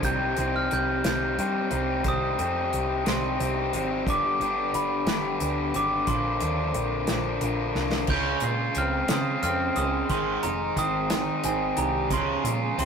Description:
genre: indie rock.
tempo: 60 BPM (dotted quarters).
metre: 6/8.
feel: straight.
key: C minor.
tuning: A4 = 439 Hz.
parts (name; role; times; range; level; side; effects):
glockenspiel with soft plastic mallets; melody; 0.0-12.9 s; Ab5 to G6; -30 LUFS; right 2 dB; none.
raw garage guitar; riff; 0.0-12.9 s; G2 to F4; -27 LUFS; left 2 dB; overdrive, spring reverb.
overdriven picked electric bass; bass; 0.0-12.9 s; F1 to Db3; -31 LUFS; right 1 dB; none.
unplugged drum kit; drums; 0.0-12.9 s; crash cymbal, hi-hat, kick drum, snare drum; -30 LUFS; equal; none.
raw garage guitar; riff; 8.1-12.9 s; Eb3 to F4; -32 LUFS; right 7 dB; overdrive.
room: light reverb.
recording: rough rehearsal-room recording.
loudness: -23 LUFS.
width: side -6 dB against mid.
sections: 0.0-8.1 A section; 8.1-12.9 B section.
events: drum fill 7.8-8.1; glockenspiel solo 8.1-12.9.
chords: 0.0 Cm; 4.1 G; 6.1 Bbadd9; 8.1 Dbmaj7; 10.1 Abmaj7; 12.1 Dbmaj7.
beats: | 0.04 1.04 | 2.05 3.06 | 4.07 5.08 | 6.08 7.09 | 8.10 9.10 | 10.11 11.11 | 12.12.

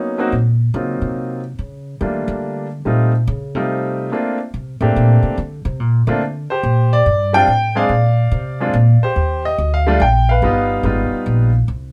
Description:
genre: jazz piano trio.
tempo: 143 BPM.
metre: 3/4.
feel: swing 66% on 8ths.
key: Bb major.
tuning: A4 = 440 Hz.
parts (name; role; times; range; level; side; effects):
clear baby grand piano; melody; 0.0-11.5 s; F#3 to G5; -20 LUFS; equal; none.
upright bass; bass; 0.3-11.9 s; G1 to Eb3; -19 LUFS; equal; none.
room: moderate studio ambience, RT60 0.5 s.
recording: none.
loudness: -17 LUFS.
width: mono.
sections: 0.0-6.6 A section; 6.6-11.9 B section.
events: upright bass solo 0.0-6.6.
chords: 0.3 Ebm13/Bb; 1.6 Gm9; 2.9 F7; 4.1 Bbmaj9; 6.6 Bb69; 7.9 Bbadd9; 9.2 Ebmaj9; 10.4 G7alt.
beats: | 0.33 0.75 1.17 | 1.59 2.01 2.43 | 2.85 3.27 3.69 | 4.11 4.54 4.96 | 5.38 5.80 6.22 | 6.64 7.06 7.48 | 7.90 8.32 8.74 | 9.16 9.58 10.00 | 10.42 10.85 11.27 | 11.69.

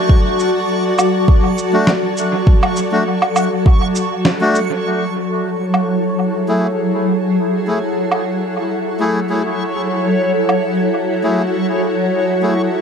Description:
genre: ambient dub.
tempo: 101 BPM.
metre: 4/4.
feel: swing 53% on 16ths.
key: F# minor.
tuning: A4 = 440 Hz.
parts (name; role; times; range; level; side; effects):
granular cloud pad; sustained chords; 0.0-12.8 s; F#3 to A5; -17 LUFS; equal; built-in reverb.
backwards swelling texture; texture; 0.0-12.8 s; C#5 to C#6; -24 LUFS; left 2 dB; built-in reverb.
electronic kick drum; drums; 0.1-3.8 s; none; -11 LUFS; equal; studio reverb.
electronic shaker, woodblock and snare drum; drums; 0.4-10.6 s; none; -20 LUFS; right 1 dB; studio reverb, dub echo.
melodica; stabs; 1.7-12.5 s; A3 to G#4; -22 LUFS; left 1 dB; dub echo.
room: moderate spring reverb, RT60 2.8 s.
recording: dark, warm production.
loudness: -14 LUFS.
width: side -7 dB against mid.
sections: 0.0-4.8 A section; 4.8-12.8 B section.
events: band accent 4.3.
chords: 0.0 D/F#; 4.8 F#m7.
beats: | 0.09 0.69 1.28 1.88 | 2.47 3.06 3.66 4.25 | 4.84 5.44 6.03 6.63 | 7.22 7.82 8.41 9.00 | 9.60 10.19 10.79 11.38 | 11.97 12.57.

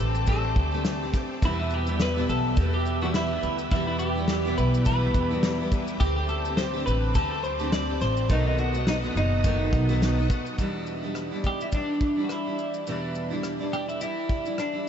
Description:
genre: acoustic pop.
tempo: 105 BPM.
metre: 4/4.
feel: swing 55% on 16ths.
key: E minor.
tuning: A4 = 440 Hz.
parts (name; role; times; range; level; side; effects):
twelve-string electric guitar; melody; 0.0-14.9 s; D4 to D5; -29 LUFS; equal; diffuse ambient delay.
picked steel-string acoustic guitar; accompaniment; 0.0-14.9 s; E2 to G4; -30 LUFS; equal; double-tracked left and right.
bright tonewheel organ; sustained chords; 0.0-10.6 s; B4 to E6; -39 LUFS; equal; chorus vibrato, slow rotary speaker.
upright bass; bass; 0.0-10.3 s; F#1 to E2; -27 LUFS; equal; none.
natural country drum kit; drums; 0.1-14.7 s; kick drum, rim click, shaker, snare drum; -28 LUFS; equal; none.
room: moderate huge ambient reverb, RT60 8.4 s.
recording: dreamy mix soaked in reverb, nothing above 7.9 kHz.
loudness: -23 LUFS.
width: side -8 dB against mid.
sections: 0.0-10.6 A section; 10.6-14.9 B section.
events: none.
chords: 0.0 D7sus4; 1.4 Em; 6.0 D7sus4; 8.3 B7; 10.6 Em7.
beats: 0.28 0.85 | 1.42 2.00 2.57 3.14 | 3.72 4.29 4.86 5.43 | 6.01 6.58 7.15 7.72 | 8.29 8.87 9.44 10.01 | 10.58 11.15 11.72 12.29 | 12.87 13.44 14.01 14.58.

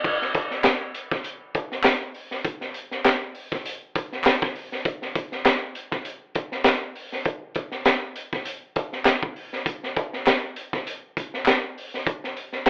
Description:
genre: funk.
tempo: 100 BPM.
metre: 4/4.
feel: swing 56% on 16ths.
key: none.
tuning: none.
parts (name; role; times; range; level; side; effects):
crunchy breakbeat drum kit; drums; 0.0-12.7 s; crash cymbal, hi-hat, kick drum, snare drum; -22 LUFS; equal; none.
group handclap; percussion; 0.6-12.7 s; none; -27 LUFS; left 1 dB; none.
room: moderate studio reverb, RT60 0.7 s.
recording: rough home demo mix, telephone sound.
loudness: -23 LUFS.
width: side -34 dB against mid.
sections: 0.0-12.7 A section.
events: none.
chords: none.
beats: | 0.05 0.65 1.25 1.85 | 2.45 3.05 3.65 4.26 | 4.86 5.46 6.06 6.66 | 7.26 7.86 8.46 9.06 | 9.66 10.26 10.86 11.46 | 12.06 12.66.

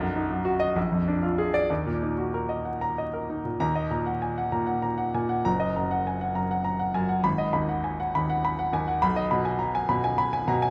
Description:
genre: classical, virtuoso piano study.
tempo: 61-69 BPM (dotted quarters).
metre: 6/8.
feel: rubato.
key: Eb minor.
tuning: A4 = 441 Hz.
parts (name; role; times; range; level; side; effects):
bright baby grand piano; solo; 0.0-10.7 s; Gb1 to Cb6; -26 LUFS; equal; none.
room: moderate recital hall reverb, RT60 1.7 s.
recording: vinyl crackle.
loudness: -27 LUFS.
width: mono.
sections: 0.0-3.6 A section; 3.6-10.7 B section.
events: none.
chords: 0.0 B; 0.8 Bb7; 1.7 Ebm; 5.5 Ebm/Gb; 7.2 Abm7; 9.0 Abm/Cb.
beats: 0.76 | 1.70 2.65 | 3.62 4.55 | 5.45 6.34 | 7.24 8.14 | 9.02 9.90.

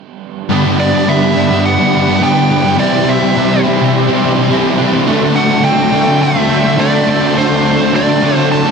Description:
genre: rock.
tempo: 105 BPM.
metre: 4/4.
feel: straight.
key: G major.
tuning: A4 = 444 Hz.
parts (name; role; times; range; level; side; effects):
brassy analog pad; sustained chords; 0.5-8.7 s; G4 to C6; -21 LUFS; equal; chorus.
twangy electric guitar; arpeggios; 0.5-8.7 s; E3 to D4; -22 LUFS; left 1 dB; ensemble chorus, tape echo.
distorted electric guitar; riff; 0.5-8.7 s; G2 to E4; -18 LUFS; equal; distortion.
overdriven semi-hollow guitar; riff; 0.5-8.7 s; G2 to G4; -16 LUFS; right 11 dB; reverse reverb.
thick fuzz guitar; riff; 0.5-8.7 s; G2 to D4; -15 LUFS; left 8 dB; distortion, wide subtle chorus.
nasal lead guitar with a parked wah; melody; 0.8-8.7 s; C5 to A5; -16 LUFS; right 2 dB; overdrive, tape echo.
room: moderate lush hall reverb, RT60 1.9 s, digital ambience.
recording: dark, warm production.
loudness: -10 LUFS.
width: side -5 dB against mid.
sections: 0.5-8.7 A section.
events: none.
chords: 0.5 Gmaj7; 2.8 Cadd9; 5.1 D7(no3).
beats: | 0.50 1.07 1.65 2.22 | 2.79 3.36 3.93 4.50 | 5.08 5.65 6.22 6.79 | 7.36 7.93 8.51.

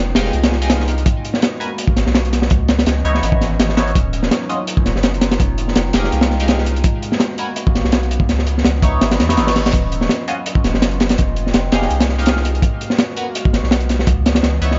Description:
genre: drum and bass, jungle.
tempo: 166 BPM.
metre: 4/4.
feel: swing 54% on 16ths.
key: unclear.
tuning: A4 = 440 Hz.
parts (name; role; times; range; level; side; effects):
warbly tape-like pad; sustained chords; 0.0-14.8 s; Fb3 to G5; -29 LUFS; equal; chorus, built-in reverb.
soft dub sub bass; bass; 0.0-14.8 s; Eb1 to Fb2; -21 LUFS; equal; none.
crunchy breakbeat drum kit; drums; 0.1-14.8 s; hi-hat, kick drum, snare drum; -18 LUFS; equal; none.
band-passed chord stab; stabs; 0.2-14.8 s; Cb4 to Ab5; -27 LUFS; equal; phaser, lush chorus, dub echo.
reverse cymbal; sound effects; 9.2-9.7 s; none; -33 LUFS; equal; none.
room: small room ambience.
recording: nothing above 7.6 kHz.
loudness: -16 LUFS.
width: mono.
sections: 0.0-14.8 A section.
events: reverse cymbal 9.2-9.7.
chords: 0.0 Fm9; 1.1 Abm9; 2.5 Dbm9; 4.0 Ebm9; 5.4 Fm9; 6.8 Abm9; 8.3 Dbm9; 9.7 Ebm9; 11.2 Fm9; 12.6 Abm9; 14.1 Dbm9.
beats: 0.34 0.70 | 1.06 1.42 1.78 2.15 | 2.51 2.87 3.23 3.59 | 3.95 4.31 4.67 5.04 | 5.40 5.76 6.12 6.48 | 6.84 7.21 7.57 7.93 | 8.29 8.65 9.01 9.37 | 9.73 10.10 10.46 10.82 | 11.18 11.54 11.90 12.27 | 12.63 12.99 13.35 13.71 | 14.07 14.43.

